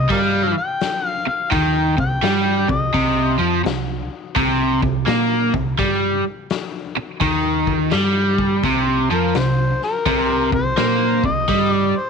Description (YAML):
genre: blues rock power trio and southern rock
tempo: 84 BPM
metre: 4/4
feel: swing 65% on 8ths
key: C minor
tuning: A4 = 440 Hz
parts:
  - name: overdriven harmonica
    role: melody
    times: 0.0-3.4, 9.1-12.1 s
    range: Bb4 to G5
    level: -22 LUFS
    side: left 4 dB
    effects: none
  - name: overdriven electric guitar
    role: riff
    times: 0.0-11.9 s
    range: C3 to Bb3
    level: -18 LUFS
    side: right 1 dB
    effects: none
  - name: hollow-body short-scale fingered electric bass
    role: bass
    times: 0.0-11.9 s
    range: C2 to Bb2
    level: -24 LUFS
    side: right 2 dB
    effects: none
  - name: raw garage drum kit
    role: drums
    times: 0.1-11.7 s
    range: hi-hat, kick drum, snare drum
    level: -26 LUFS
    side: left 5 dB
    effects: none
room: small room ambience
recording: 1960s-style stereo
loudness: -16 LUFS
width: side -5 dB against mid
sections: 0.0-12.1 A section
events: none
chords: 0.0 Cm